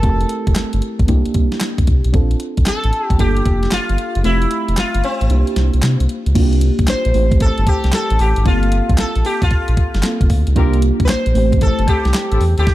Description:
R&B, new jack swing; 114 BPM; 4/4; swing 66% on 16ths; A4 = 439 Hz
sitar; melody; 0.0-12.7 s; C4 to C5; -21 LUFS; left 1 dB; ping-pong delay
mellow FM electric piano; accompaniment; 0.0-12.7 s; A3 to A4; -22 LUFS; right 1 dB; chorus, phaser
round analog bass; bass; 0.0-12.7 s; F1 to C3; -16 LUFS; equal
crisp 8-bit digital drum machine; drums; 0.0-12.7 s; crash cymbal, handclaps, hi-hat, kick drum, snare drum; -18 LUFS; equal
mellow horn section; stabs; 10.6-12.7 s; C4 to Bb4; -28 LUFS; left 5 dB; ping-pong delay
digital ambience; dark, warm production; -13 LUFS; side -15 dB against mid
0.0-6.3 A section; 6.3-12.7 B section
kick muted 4.2-6.3
0.0 Fmaj7; 1.1 C7; 2.1 Bbmaj7; 3.2 Gm7; 4.2 Fmaj7; 5.3 C7; 6.3 C7sus4; 7.1 Am7; 8.5 Gm11; 10.6 C7sus4; 11.3 Am7

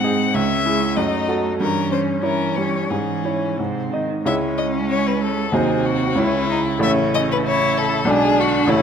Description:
quick classical-period movement for piano quartet; 88-98 BPM; 2/4; rubato; C# minor; A4 = 440 Hz
rich violin; melody; 0.0-8.8 s; E4 to F#5; -23 LUFS; left 6 dB
rich cello; second line; 0.0-8.8 s; B#2 to A3; -25 LUFS; right 10 dB
rich violin; second line; 0.0-8.8 s; B#3 to E4; -25 LUFS; left 3 dB
bright baby grand piano; accompaniment; 0.0-8.8 s; A1 to D#5; -21 LUFS; right 1 dB
moderate scoring stage reverb, RT60 1.6 s; close, detailed microphones; -17 LUFS; side -7 dB against mid
0.0-4.3 A section; 4.3-8.8 B section
0.3 C#m; 1.0 D#dim/F#; 1.6 Gdim7; 2.9 C#m/G#; 3.6 G#; 4.3 C#m; 5.5 Cdim/Eb; 6.2 C#m; 6.8 A; 8.1 G#dim/B

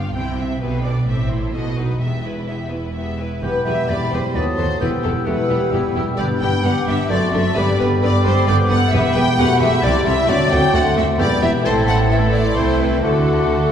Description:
quick classical-period movement for symphony orchestra; 131 BPM; 3/4; straight; E minor; A4 = 440 Hz
warm studio violin section; melody; 0.0-13.7 s; G4 to G5; -29 LUFS; left 4 dB
warm studio violin section; second line; 0.0-13.7 s; E4 to G5; -23 LUFS; left 2 dB
rich studio viola section; accompaniment; 0.0-13.7 s; A3 to G4; -26 LUFS; right 1 dB
warm studio cello section; bass; 0.0-13.7 s; C2 to D3; -23 LUFS; right 2 dB
warm studio double bass section; bass; 0.0-13.7 s; E1 to D#2; -22 LUFS; right 1 dB
small flute group; second line; 3.4-13.7 s; A5 to E6; -27 LUFS; left 1 dB
warm clarinet; second line; 3.4-13.7 s; D4 to A4; -28 LUFS; left 3 dB
warm oboe; second line; 3.4-13.7 s; E5 to B5; -28 LUFS; equal
warm bassoon; accompaniment; 3.4-13.7 s; F#3 to C4; -24 LUFS; equal
mellow French horn section; sustained chords; 3.4-13.7 s; A3 to A4; -25 LUFS; left 3 dB
wet concert hall reverb, RT60 2.1 s; heard from further back in the room; -15 LUFS; side -8 dB against mid
0.0-3.4 A section; 3.4-13.7 A section
0.1 C; 0.6 G/B; 1.1 Am; 1.5 B7; 2.0 Em; 4.4 B7/D#; 4.8 Em; 6.2 G; 7.1 D7/F#; 7.6 G; 8.9 Em; 9.8 Am7/C; 10.3 D7; 11.2 Em; 11.7 Am; 12.6 Am/C; 13.0 D

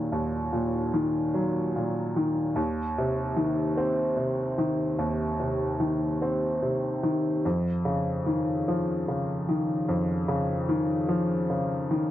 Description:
pop; 49 BPM (dotted quarters); 6/8; straight; Db major; A4 = 440 Hz
warm upright piano; solo; 0.0-12.1 s; Eb2 to C4; -25 LUFS; equal
light reverb; dry, close 1970s-style studio recording; -25 LUFS; side -13 dB against mid
0.0-12.1 A section
0.0 Ebm; 2.6 Cm/Eb; 7.4 Dbadd9/F

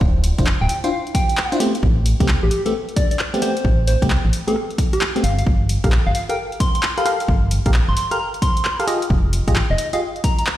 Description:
UK garage, two-step garage; 132 BPM; 4/4; swing 65% on 16ths; A4 = 440 Hz
organ-like FM bass; bass; 0.0-9.8 s; D1 to C2; -18 LUFS; equal; sidechain pumping
electronic kick drum; drums; 0.0-10.4 s; -19 LUFS; equal; overdrive
punchy analog drum machine; drums; 0.2-10.6 s; handclaps, hi-hat, rim click; -26 LUFS; equal; overdrive
FM electric piano; stabs; 0.4-10.0 s; A3 to F5; -24 LUFS; equal; chorus, phaser, tape echo
soft struck synth lead; melody; 0.6-10.4 s; G4 to C6; -25 LUFS; equal; chorus, tape echo
light reverb, digital ambience; played on a big sound system in a bare room, stone room reverb; -16 LUFS; side -13 dB against mid
0.0-10.6 A section
0.0 Dm9; 1.6 Am9; 5.2 Gm9; 8.9 Fm9

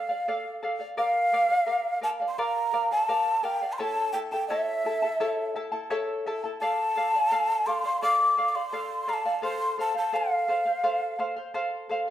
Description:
andean folk; 85 BPM; 4/4; straight; D minor; A4 = 440 Hz
breathy mellow quena; melody; 0.0-11.2 s; E5 to D6; -25 LUFS; equal
charango; accompaniment; 0.0-12.1 s; E4 to A5; -30 LUFS; equal
wet large studio reverb, RT60 1.0 s; band playing live in one room; -24 LUFS; side -12 dB against mid
1.0-12.1 A section
0.0 Dm; 1.0 Bb; 3.8 A; 6.6 Dm; 9.4 F

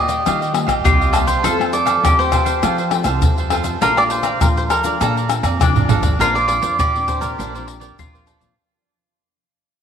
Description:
samba and choro; 101 BPM; 4/4; straight; Bb major; A4 = 437 Hz
cavaquinho; melody; 0.0-8.2 s; G4 to Eb5; -20 LUFS; right 3 dB
mandolin; second line; 0.0-8.5 s; D4 to A4; -23 LUFS; left 8 dB
cavaquinho; accompaniment; 0.0-8.6 s; D4 to Bb5; -25 LUFS; right 10 dB
nylon-string guitar; accompaniment; 0.0-8.5 s; Bb2 to F4; -28 LUFS; left 8 dB
tube shaker, pandeiro, surdo and tamborim; percussion; 0.1-8.6 s; -19 LUFS; left 2 dB
upright bass; bass; 0.3-8.5 s; Bb1 to F3; -24 LUFS; right 2 dB
moderate plate reverb, RT60 2.9 s; 1960s-style stereo with parts hard left and right; -14 LUFS; side -8 dB against mid
0.0-6.2 A section; 6.2-8.6 B section
drum fill 5.6-6.2; fade-out 6.2-8.6
0.0 Ebadd9; 1.4 F; 3.8 Bbmaj7; 6.2 Bbadd9

